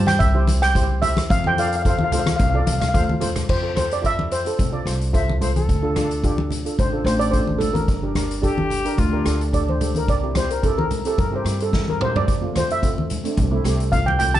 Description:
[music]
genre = calypso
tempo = 109 BPM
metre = 4/4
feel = swing 53% on 16ths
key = F major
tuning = A4 = 440 Hz
[part]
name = steel pan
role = melody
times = 0.0-14.4 s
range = A4 to A5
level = -23 LUFS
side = equal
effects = none
[part]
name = steel pan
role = accompaniment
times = 0.0-14.4 s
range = A3 to D5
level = -27 LUFS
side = right 2 dB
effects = none
[part]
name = upright bass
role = bass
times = 0.0-14.4 s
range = G1 to G2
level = -23 LUFS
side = equal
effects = none
[part]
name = street-band drum kit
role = drums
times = 0.1-14.4 s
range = crash cymbal, hi-hat, kick drum, rim click, snare drum, toms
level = -24 LUFS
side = equal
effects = none
[part]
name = congas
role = percussion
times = 0.1-14.4 s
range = none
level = -25 LUFS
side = left 1 dB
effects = none
[part]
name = breathy silver concert flute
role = second line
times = 5.1-9.4 s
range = F4 to E5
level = -26 LUFS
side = left 3 dB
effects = none
[sound]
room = light reverb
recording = nothing above 10.8 kHz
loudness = -18 LUFS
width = side -12 dB against mid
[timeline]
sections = 0.0-3.5 A section; 3.5-14.4 B section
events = drum fill 2.9-3.5, 11.7-12.3; steel pan solo 3.5-14.4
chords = 0.2 C; 1.3 F; 5.7 Dm7; 7.9 Gm; 10.1 C7; 12.3 F

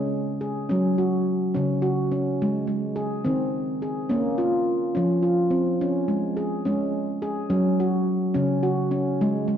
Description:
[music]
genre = world meditative, meditative tuned percussion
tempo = 71 BPM (dotted quarters)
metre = 6/8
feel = straight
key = unclear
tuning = A4 = 441 Hz
[part]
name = handpan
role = solo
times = 0.0-9.6 s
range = Db3 to Ab4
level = -22 LUFS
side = equal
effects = none
[sound]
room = wet concert hall reverb, RT60 2.2 s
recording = dark, warm production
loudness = -22 LUFS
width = side -9 dB against mid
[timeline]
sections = 0.0-9.6 A section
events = none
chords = 0.0 Db5; 0.7 Gb5; 2.4 Ab; 4.1 Bbm; 5.8 Db5; 7.5 Gb5

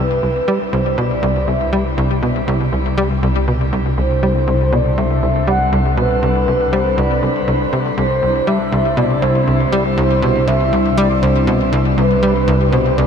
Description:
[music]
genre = ambient, sequencer-driven space music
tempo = 120 BPM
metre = 4/4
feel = straight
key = C major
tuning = A4 = 442 Hz
[part]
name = mellow horn-like synth lead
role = melody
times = 0.0-13.1 s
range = B4 to F#5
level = -19 LUFS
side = equal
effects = chorus, ping-pong delay
[part]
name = sweeping resonant pad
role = sustained chords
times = 0.0-13.1 s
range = C3 to A4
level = -24 LUFS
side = equal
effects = chorus
[part]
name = tight sequencer bass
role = riff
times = 0.0-13.1 s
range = C2 to G3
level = -17 LUFS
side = equal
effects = analog chorus, ping-pong delay
[part]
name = analog drone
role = bass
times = 1.0-13.1 s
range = C2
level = -20 LUFS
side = equal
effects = chorus
[sound]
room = wet shimmer reverb, RT60 8.6 s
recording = none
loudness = -13 LUFS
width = side -7 dB against mid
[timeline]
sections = 0.0-13.1 A section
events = fade-in on analog synth pad 0.0-13.1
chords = 0.0 Cadd9

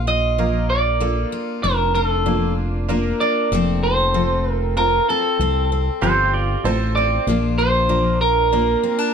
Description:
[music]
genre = country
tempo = 96 BPM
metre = 3/4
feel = straight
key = Bb major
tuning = A4 = 440 Hz
[part]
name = electric guitar through a small old amp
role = melody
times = 0.0-9.1 s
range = A4 to Eb5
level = -19 LUFS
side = right 1 dB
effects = none
[part]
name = picked steel-string acoustic guitar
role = accompaniment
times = 0.0-9.1 s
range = F2 to A4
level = -24 LUFS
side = left 5 dB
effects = none
[part]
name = fingered electric bass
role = bass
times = 0.0-8.7 s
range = F1 to C2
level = -22 LUFS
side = equal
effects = none
[part]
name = tack piano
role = accompaniment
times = 0.4-9.1 s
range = Bb3 to A5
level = -27 LUFS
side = right 5 dB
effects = none
[part]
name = pedal steel guitar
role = second line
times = 6.0-7.1 s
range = F4 to D5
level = -21 LUFS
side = right 3 dB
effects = none
[sound]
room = light reverb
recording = none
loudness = -16 LUFS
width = side -7 dB against mid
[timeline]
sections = 0.0-7.3 A section; 7.3-9.1 A section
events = none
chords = 0.0 Bb; 3.5 F; 7.3 Bb

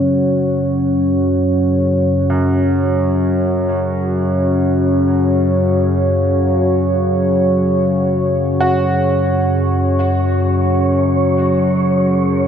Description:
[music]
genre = dark ambient drone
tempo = free time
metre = none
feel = none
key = unclear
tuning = A4 = 438 Hz
[part]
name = deep dark ambient pad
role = sustained chords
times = 0.0-12.5 s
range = C#4 to C#5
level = -16 LUFS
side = equal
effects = chorus, built-in reverb
[part]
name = bright concert grand piano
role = arpeggios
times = 0.0-12.5 s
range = F#2 to F#4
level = -25 LUFS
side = right 1 dB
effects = tape echo
[part]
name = analog drone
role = drone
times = 0.0-12.5 s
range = F#2 to C#3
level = -16 LUFS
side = equal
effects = chorus
[part]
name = wind-like tuned noise texture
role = texture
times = 9.2-12.5 s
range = C#5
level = -24 LUFS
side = left 2 dB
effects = built-in reverb, wide subtle chorus
[sound]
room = moderate plate reverb, RT60 3.5 s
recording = dreamy mix soaked in reverb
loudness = -13 LUFS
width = side -8 dB against mid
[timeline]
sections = 0.0-12.5 A section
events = none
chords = 0.0 F#5

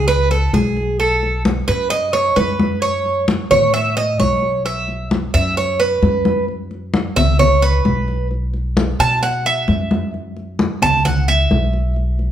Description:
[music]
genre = latin, Cuban son and guajira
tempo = 131 BPM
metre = 4/4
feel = straight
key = unclear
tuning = A4 = 440 Hz
[part]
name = Cuban tres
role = arpeggios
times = 0.0-11.9 s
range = G#4 to A5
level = -17 LUFS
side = right 2 dB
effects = none
[part]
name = upright bass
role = bass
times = 0.0-12.3 s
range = B1 to B2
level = -20 LUFS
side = equal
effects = none
[part]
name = congas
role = percussion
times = 0.1-12.3 s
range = none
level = -20 LUFS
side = left 2 dB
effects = none
[sound]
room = moderate large studio reverb, RT60 1.1 s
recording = band playing live in one room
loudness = -14 LUFS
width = side -10 dB against mid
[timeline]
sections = 0.0-12.3 A section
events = Cuban tres solo 0.0-12.3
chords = 0.0 F#sus2 (rootless); 1.0 B5; 2.8 F#m; 4.7 Bsus4; 10.1 F#5

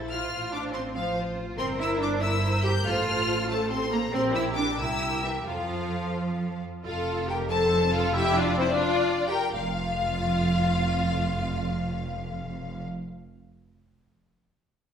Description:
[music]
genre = quick classical-period movement for string orchestra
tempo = 82-96 BPM (dotted quarters)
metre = 6/8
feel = rubato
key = F major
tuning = A4 = 440 Hz
[part]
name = warm studio violin section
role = second line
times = 0.0-12.8 s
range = E4 to F5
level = -31 LUFS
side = left 2 dB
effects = none
[part]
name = rich studio double bass section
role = bass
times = 0.0-12.8 s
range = F1 to F2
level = -32 LUFS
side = right 2 dB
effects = none
[part]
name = rich studio violin section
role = melody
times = 0.1-12.8 s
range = C5 to G6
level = -31 LUFS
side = left 4 dB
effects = none
[part]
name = rich studio viola section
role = accompaniment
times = 0.1-12.8 s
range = E3 to A4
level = -30 LUFS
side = equal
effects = none
[part]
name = rich studio cello section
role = bass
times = 0.1-12.8 s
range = F2 to G4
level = -31 LUFS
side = right 2 dB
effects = none
[sound]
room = wet recital hall reverb, RT60 1.3 s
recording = recorded in a church or concert hall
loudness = -24 LUFS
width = side -8 dB against mid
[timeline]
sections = 0.0-6.9 A section; 6.9-9.5 B section; 9.5-12.3 C section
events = slowing down 6.2-9.5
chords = 0.3 F/A; 1.6 C7/G; 2.9 F/A; 4.1 Gm/Bb; 4.8 C7; 5.5 F; 9.5 N.C.

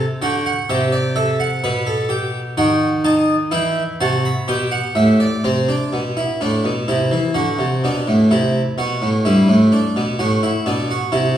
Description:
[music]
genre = classical, baroque-style 3-part fugue for harpsichord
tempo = 63 BPM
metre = 4/4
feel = straight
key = unclear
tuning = A4 = 437 Hz
[part]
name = harpsichord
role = solo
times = 0.0-11.4 s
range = G2 to B5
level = -15 LUFS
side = equal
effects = none
[sound]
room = wet recital hall reverb, RT60 1.5 s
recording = heard from further back in the room, small room ambience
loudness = -15 LUFS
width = side -10 dB against mid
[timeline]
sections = 0.0-5.4 A section; 5.4-11.4 B section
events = none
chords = 0.0 Am; 1.6 B7; 3.5 Em; 5.4 Am; 7.3 D; 9.2 G

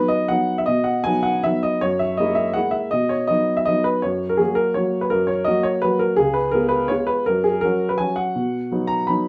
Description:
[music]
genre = classical, piano waltz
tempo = 149-175 BPM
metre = 3/4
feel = rubato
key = B major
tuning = A4 = 439 Hz
[part]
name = warm upright piano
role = solo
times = 0.0-9.3 s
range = C#2 to B5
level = -20 LUFS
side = equal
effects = none
[sound]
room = moderate studio reverb, RT60 0.6 s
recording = none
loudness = -20 LUFS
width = mono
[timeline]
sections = 0.0-9.3 A section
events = none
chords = 0.0 B; 1.8 F#9; 2.9 B; 4.0 F#; 6.2 C#7; 7.3 F#5; 8.4 B

